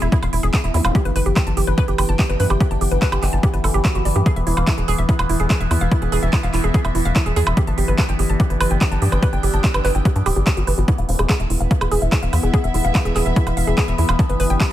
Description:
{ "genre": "psychedelic trance", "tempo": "145 BPM", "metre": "4/4", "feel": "straight", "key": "unclear", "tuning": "A4 = 441 Hz", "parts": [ { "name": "vowel-sweep wobble bass", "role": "second line", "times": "0.0-0.1, 4.5-6.3, 11.1-13.3 s", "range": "E3 to B3", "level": "-37 LUFS", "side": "left 3 dB", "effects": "none" }, { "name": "overtone-sweeping drone", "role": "sustained chords", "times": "0.0-14.7 s", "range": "E3 to B3", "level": "-26 LUFS", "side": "left 2 dB", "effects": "chorus, built-in reverb, sidechain pumping" }, { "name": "woody wave-folded pluck", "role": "riff", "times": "0.0-14.6 s", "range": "E4 to A5", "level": "-25 LUFS", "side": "moving between left 2 dB and right 5 dB", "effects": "chorus, auto-pan, sidechain pumping, dub echo" }, { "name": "tight sequencer bass", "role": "bass", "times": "0.0-14.6 s", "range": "D1 to G2", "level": "-19 LUFS", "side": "equal", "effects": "none" }, { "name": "big-room dance drum kit", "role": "drums", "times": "0.0-14.7 s", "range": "handclaps, hi-hat, woodblock", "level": "-26 LUFS", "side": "right 2 dB", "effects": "overdrive" }, { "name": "dark studio string section", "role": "texture", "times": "0.0-14.7 s", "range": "B3 to G5", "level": "-33 LUFS", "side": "right 2 dB", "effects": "sidechain pumping" }, { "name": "electronic kick drum", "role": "drums", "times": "0.1-14.7 s", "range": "none", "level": "-18 LUFS", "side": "equal", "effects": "overdrive" }, { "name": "zap", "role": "sound effects", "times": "0.7-0.8 s", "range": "none", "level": "-31 LUFS", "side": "equal", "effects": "none" } ], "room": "digital ambience", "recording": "none", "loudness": "-16 LUFS", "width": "side -13 dB against mid", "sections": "0.0-14.7 A section", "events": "fade-in on string section 0.0-14.7", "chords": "0.0 E5; 0.9 G5; 4.3 E5; 7.6 G5; 10.9 E5; 14.2 G5", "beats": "0.12 0.54 | 0.95 1.36 1.78 2.19 | 2.60 3.02 3.43 3.85 | 4.26 4.67 5.09 5.50 | 5.92 6.33 6.74 7.16 | 7.57 7.98 8.40 8.81 | 9.23 9.64 10.05 10.47 | 10.88 11.29 11.71 12.12 | 12.54 12.95 13.36 13.78 | 14.19 14.61" }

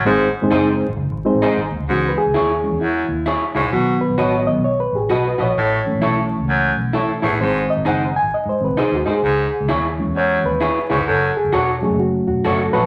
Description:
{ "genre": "soul", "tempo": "131 BPM", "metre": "4/4", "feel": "swing 62% on 8ths", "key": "C# minor", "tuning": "A4 = 440 Hz", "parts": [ { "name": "vintage muted fingered electric bass", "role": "bass", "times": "0.0-12.9 s", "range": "E1 to G#2", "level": "-27 LUFS", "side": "equal", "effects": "none" }, { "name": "mellow reed electric piano", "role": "accompaniment", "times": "0.1-12.9 s", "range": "D#3 to G#5", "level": "-21 LUFS", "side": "equal", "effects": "tube saturation" }, { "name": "raspy baritone saxophone", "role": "riff", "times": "0.1-11.3 s", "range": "E2 to B2", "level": "-23 LUFS", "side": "equal", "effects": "none" }, { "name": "electric guitar through a small old amp", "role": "stabs", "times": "0.5-12.8 s", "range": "D#4 to D#5", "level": "-23 LUFS", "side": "equal", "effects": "none" } ], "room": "wet large studio reverb, RT60 1.1 s", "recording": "vinyl crackle", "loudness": "-18 LUFS", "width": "mono", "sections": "0.0-1.9 A section; 1.9-12.9 B section", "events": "reed electric piano solo 1.9-12.9", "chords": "0.1 G#; 1.9 C#m; 3.7 B; 5.6 A; 7.4 G#; 9.2 C#m; 11.1 F#m", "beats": "| 0.05 0.51 0.97 1.43 | 1.89 2.35 2.81 3.27 | 3.73 4.19 4.65 5.11 | 5.57 6.03 6.49 6.95 | 7.41 7.86 8.32 8.78 | 9.24 9.70 10.16 10.62 | 11.07 11.53 11.99 12.45" }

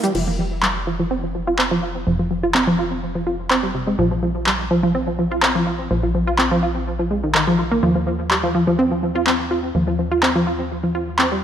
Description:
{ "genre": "progressive house", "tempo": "125 BPM", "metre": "4/4", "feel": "straight", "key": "unclear", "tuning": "A4 = 440 Hz", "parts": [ { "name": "wide unison pluck", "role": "arpeggios", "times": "0.0-11.4 s", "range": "C3 to F4", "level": "-19 LUFS", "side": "equal", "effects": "tape echo" }, { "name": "big-room dance drum kit", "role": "drums", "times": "0.0-11.3 s", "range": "crash cymbal, handclaps, hi-hat, shaker", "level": "-21 LUFS", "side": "equal", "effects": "overdrive, small room reverb" }, { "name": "plucky analog bass", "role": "bass", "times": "0.1-11.4 s", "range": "F1 to Eb2", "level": "-27 LUFS", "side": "equal", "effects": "tube saturation" } ], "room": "moderate scoring stage reverb, RT60 1.9 s, digital ambience", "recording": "none", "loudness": "-17 LUFS", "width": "side -9 dB against mid", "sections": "0.1-11.4 A section", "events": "filter sweep on synth pluck 0.1-11.4", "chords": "0.1 N.C.; 4.0 Bb5; 7.8 N.C.", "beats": "| 0.15 0.63 1.11 1.59 | 2.07 2.55 3.03 3.51 | 3.99 4.47 4.95 5.43 | 5.91 6.39 6.87 7.35 | 7.83 8.31 8.79 9.27 | 9.75 10.23 10.71 11.19" }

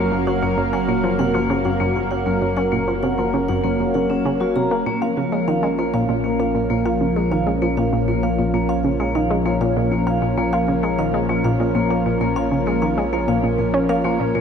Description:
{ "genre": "ambient, sequencer-driven space music", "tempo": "98 BPM", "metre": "4/4", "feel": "straight", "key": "Bb minor", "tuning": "A4 = 440 Hz", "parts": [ { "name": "lush unison pad", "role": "sustained chords", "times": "0.0-14.4 s", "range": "F3 to F5", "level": "-21 LUFS", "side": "equal", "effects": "chorus, shimmer reverb" }, { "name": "vibraphone with hard mallets", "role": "arpeggios", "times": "0.0-14.4 s", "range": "Bb3 to Bb5", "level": "-25 LUFS", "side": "left 1 dB", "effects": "auto-pan, tape echo, shimmer reverb" }, { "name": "analog pluck", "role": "riff", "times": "0.0-14.4 s", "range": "Gb2 to F4", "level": "-22 LUFS", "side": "equal", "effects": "chorus, tape echo, shimmer reverb" }, { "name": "fat analog bass", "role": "bass", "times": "0.0-14.4 s", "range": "Gb1 to Bb1", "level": "-29 LUFS", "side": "equal", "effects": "none" } ], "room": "wet lush hall reverb, RT60 3.2 s", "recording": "none", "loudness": "-17 LUFS", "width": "side -7 dB against mid", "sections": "0.0-14.4 A section", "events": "none", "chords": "0.0 Gb; 4.9 Bbm", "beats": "0.58 1.19 1.80 | 2.42 3.03 3.64 4.25 | 4.86 5.48 6.09 6.70 | 7.31 7.92 8.54 9.15 | 9.76 10.37 10.99 11.60 | 12.21 12.82 13.44 14.05" }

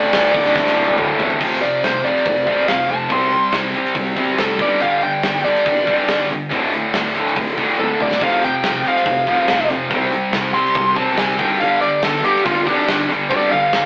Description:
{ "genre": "hard rock", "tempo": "141 BPM", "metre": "4/4", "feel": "straight", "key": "unclear", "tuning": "A4 = 440 Hz", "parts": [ { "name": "smooth overdriven lead guitar", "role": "melody", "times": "0.0-13.9 s", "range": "D4 to C6", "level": "-17 LUFS", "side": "equal", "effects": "none" }, { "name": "distorted electric guitar", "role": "riff", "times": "0.0-13.9 s", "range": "D2 to C4", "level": "-25 LUFS", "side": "equal", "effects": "distortion" }, { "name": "heavy high-gain guitar", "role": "riff", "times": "0.0-13.9 s", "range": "D2 to C4", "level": "-21 LUFS", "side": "equal", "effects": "distortion" }, { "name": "scooped high-gain guitar", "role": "riff", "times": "0.0-13.9 s", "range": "D2 to C4", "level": "-24 LUFS", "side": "equal", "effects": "distortion" }, { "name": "overdriven picked electric bass", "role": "bass", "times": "0.0-13.9 s", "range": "D1 to D2", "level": "-30 LUFS", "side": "equal", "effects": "none" }, { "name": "gated 80s drum kit", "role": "drums", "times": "0.1-13.8 s", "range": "crash cymbal, hi-hat, kick drum, snare drum, toms", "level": "-22 LUFS", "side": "equal", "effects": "none" } ], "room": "moderate stone room reverb, RT60 1.0 s", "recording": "rough rehearsal-room recording, warm saturation, AM radio sound", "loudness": "-14 LUFS", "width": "side -32 dB against mid", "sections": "0.0-1.4 A section; 1.4-13.9 B section", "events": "drum fill 0.6-1.4, 7.8-8.2; lead electric guitar solo 1.4-13.9", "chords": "0.0 D5; 1.4 F5; 3.1 C5; 4.6 G5; 6.5 D5; 8.2 F5; 9.9 C5; 11.4 G5", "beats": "0.14 0.56 0.98 | 1.41 1.83 2.26 2.69 | 3.11 3.54 3.96 4.39 | 4.81 5.24 5.67 6.09 | 6.52 6.94 7.37 7.79 | 8.22 8.64 9.07 9.49 | 9.92 10.34 10.77 11.19 | 11.61 12.04 12.46 12.89 | 13.31 13.73" }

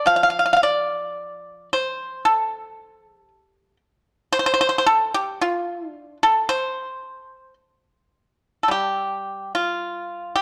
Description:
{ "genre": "chinese traditional, Chinese solo plucked strings", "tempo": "52-58 BPM", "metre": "2/4", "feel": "rubato", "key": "unclear", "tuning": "A4 = 440 Hz", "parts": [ { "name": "pipa", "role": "solo", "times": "0.0-10.4 s", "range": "F3 to F5", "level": "-22 LUFS", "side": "equal", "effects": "none" } ], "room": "light reverb", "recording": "dark, warm production", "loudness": "-22 LUFS", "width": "mono", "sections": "0.0-8.7 A section; 8.7-10.4 B section", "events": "none", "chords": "none", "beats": "| 0.09 1.20 | 2.26 3.29 | 4.33 5.39 | 6.47 7.56 | 8.70 9.84" }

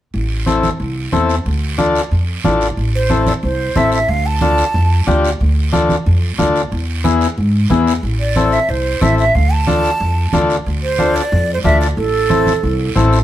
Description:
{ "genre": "latin, cumbia", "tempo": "182 BPM", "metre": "4/4", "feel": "straight", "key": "A minor", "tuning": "A4 = 440 Hz", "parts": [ { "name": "upright bass", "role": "bass", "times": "0.1-13.2 s", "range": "A1 to G#2", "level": "-16 LUFS", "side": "equal", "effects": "none" }, { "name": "guiro", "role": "percussion", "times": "0.1-13.2 s", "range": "none", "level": "-29 LUFS", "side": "right 6 dB", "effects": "none" }, { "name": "overdriven combo organ", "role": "accompaniment", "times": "0.5-13.2 s", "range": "B3 to A4", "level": "-17 LUFS", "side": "left 4 dB", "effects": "none" }, { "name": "congas", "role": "percussion", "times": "0.5-13.1 s", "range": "none", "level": "-21 LUFS", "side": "right 3 dB", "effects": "none" }, { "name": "breathy hollow jazz flute", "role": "melody", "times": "3.0-5.2, 8.2-12.9 s", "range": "A4 to A5", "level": "-18 LUFS", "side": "right 3 dB", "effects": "none" } ], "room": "light reverb", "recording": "band playing live in one room", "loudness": "-13 LUFS", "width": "side -13 dB against mid", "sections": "0.1-2.8 A section; 2.8-13.2 B section", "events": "none", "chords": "0.1 Am; 1.5 Dm; 2.8 Am; 4.1 Dm; 6.7 E; 8.0 Am; 9.3 Dm; 12.0 Am", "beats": "| 0.13 0.47 0.80 1.12 | 1.45 1.78 2.11 2.44 | 2.77 3.10 3.43 3.76 | 4.09 4.42 4.75 5.08 | 5.40 5.73 6.06 6.39 | 6.72 7.05 7.38 7.71 | 8.04 8.36 8.69 9.02 | 9.35 9.68 10.01 10.34 | 10.66 10.99 11.32 11.65 | 11.98 12.30 12.63 12.96" }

